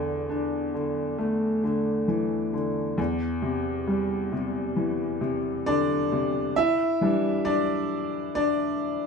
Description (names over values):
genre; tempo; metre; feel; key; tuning
pop; 67 BPM; 4/4; straight; unclear; A4 = 440 Hz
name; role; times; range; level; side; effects
clear upright piano; solo; 0.0-9.1 s; E2 to E5; -24 LUFS; left 1 dB; none
room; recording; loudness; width
wet large studio reverb, RT60 0.8 s; band playing live in one room; -24 LUFS; side -5 dB against mid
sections
0.0-6.6 A section; 6.6-9.1 B section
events
upright piano solo 6.6-9.1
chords
0.0 Dsus2/E; 3.0 Cadd9/E; 6.6 Em7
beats
0.30 1.20 2.09 | 2.99 3.88 4.78 5.67 | 6.57 7.46 8.36